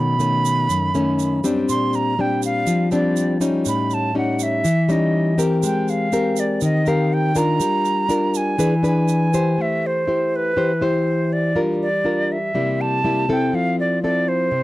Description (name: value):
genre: bossa nova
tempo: 122 BPM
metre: 4/4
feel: straight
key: A minor from 9.6 s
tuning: A4 = 440 Hz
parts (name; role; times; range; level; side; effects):
- hollow concert flute; melody; 0.0-14.6 s; B4 to C6; -22 LUFS; right 2 dB; none
- nylon-string guitar; accompaniment; 0.0-14.6 s; F#2 to C5; -19 LUFS; left 1 dB; none
- egg shaker; percussion; 0.2-9.6 s; none; -33 LUFS; right 17 dB; none
room: light reverb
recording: dry, close 1970s-style studio recording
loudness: -17 LUFS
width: side -17 dB against mid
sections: 0.0-9.6 A section; 9.6-14.6 B section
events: none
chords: 0.0 B9; 1.7 Bb69; 3.7 A7#11; 5.6 Abmaj9; 7.6 Gm7; 8.6 E7; 9.6 Am7; 11.6 Gm7; 12.5 C7; 13.5 Fmaj7